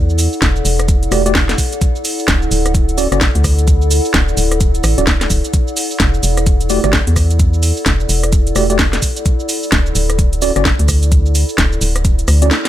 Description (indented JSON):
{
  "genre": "UK garage, two-step garage",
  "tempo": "129 BPM",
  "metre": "4/4",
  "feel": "swing 61% on 16ths",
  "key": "unclear",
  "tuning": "A4 = 436 Hz",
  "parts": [
    { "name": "organ-like FM bass", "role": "bass", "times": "0.0-12.5 s", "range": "D1 to E2", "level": "-15 LUFS", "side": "equal", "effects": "none" },
    { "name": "warbly tape-like pad", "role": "texture", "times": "0.0-12.7 s", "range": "E4 to F#5", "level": "-22 LUFS", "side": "left 1 dB", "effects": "chorus, built-in reverb, sidechain pumping" },
    { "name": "garage drum kit", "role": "drums", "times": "0.1-12.7 s", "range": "hi-hat, rim click, shaker, snare drum", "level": "-18 LUFS", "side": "right 1 dB", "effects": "small room ambience" },
    { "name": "electronic kick drum", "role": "drums", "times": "0.4-12.2 s", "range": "none", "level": "-15 LUFS", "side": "equal", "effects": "small room ambience" },
    { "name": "mellow tine electric piano", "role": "stabs", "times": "1.1-12.5 s", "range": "A3 to D5", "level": "-18 LUFS", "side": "right 1 dB", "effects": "medium stereo tremolo, ping-pong delay" }
  ],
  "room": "little or no reverb",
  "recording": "none",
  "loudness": "-12 LUFS",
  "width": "side -13 dB against mid",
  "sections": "0.0-12.7 A section",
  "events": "break 12.5; band accent 12.5",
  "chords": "0.0 E9sus4; 1.6 D; 5.5 Em11; 9.0 D",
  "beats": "0.42 0.89 1.35 | 1.81 2.28 2.75 3.21 | 3.68 4.14 4.61 5.07 | 5.54 6.00 6.47 6.93 | 7.40 7.86 8.33 8.79 | 9.26 9.72 10.19 10.65 | 11.12 11.58 12.05 12.51"
}